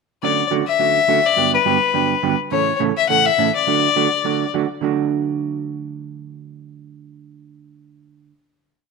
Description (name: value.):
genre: country.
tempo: 208 BPM.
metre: 4/4.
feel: swing 60% on 8ths.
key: D major.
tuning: A4 = 440 Hz.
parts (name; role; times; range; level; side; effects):
rich fiddle; melody; 0.2-4.5 s; B4 to F#5; -16 LUFS; left 10 dB; none.
hollow-body jazz guitar; accompaniment; 0.2-8.3 s; G2 to A4; -21 LUFS; right 11 dB; none.
room: wet echo chamber reverb, RT60 1.8 s.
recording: 1960s-style stereo with parts hard left and right.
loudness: -16 LUFS.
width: side -4 dB against mid.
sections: 0.2-4.8 A section; 4.8-7.1 final chord.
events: none.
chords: 0.2 Dmaj7; 1.4 Gmaj7; 2.5 A; 3.7 D.